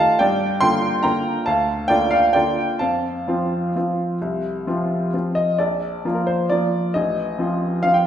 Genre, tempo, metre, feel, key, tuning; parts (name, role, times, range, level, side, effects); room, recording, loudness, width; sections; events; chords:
classical, piano waltz; 125-147 BPM; 3/4; rubato; Bb major; A4 = 438 Hz
clear upright piano; solo; 0.0-8.1 s; A1 to C6; -18 LUFS; equal
wet recital hall reverb, RT60 1.6 s; heard from further back in the room; -18 LUFS; side -10 dB against mid
0.0-5.6 A section; 5.6-8.1 B section
0.2 Gm7; 2.8 F; 5.6 Bb; 7.0 F7/A